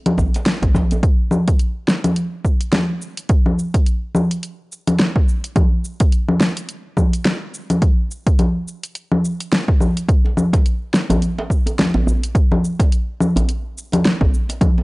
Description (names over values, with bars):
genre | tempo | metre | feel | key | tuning
downtempo | 106 BPM | 4/4 | swing 58% on 16ths | none | none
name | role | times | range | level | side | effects
deep house drum kit | drums | 0.1-14.8 s | congas, hi-hat, shaker, snare drum | -18 LUFS | equal | overdrive
electronic kick drum | drums | 0.2-14.7 s | none | -15 LUFS | equal | overdrive
djembe | percussion | 0.2-1.0, 10.2-14.8 s | none | -22 LUFS | right 1 dB | none
room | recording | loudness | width
little or no reverb | dry, gritty hardware recording, transformer saturation, nothing above 11.0 kHz | -15 LUFS | side -23 dB against mid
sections
0.0-1.0 A section; 1.0-14.8 B section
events
none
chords
none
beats
0.46 | 1.03 1.59 2.16 2.73 | 3.29 3.86 4.43 4.99 | 5.56 6.12 6.69 7.26 | 7.82 8.39 8.95 9.52 | 10.09 10.65 11.22 11.78 | 12.35 12.92 13.48 14.05 | 14.61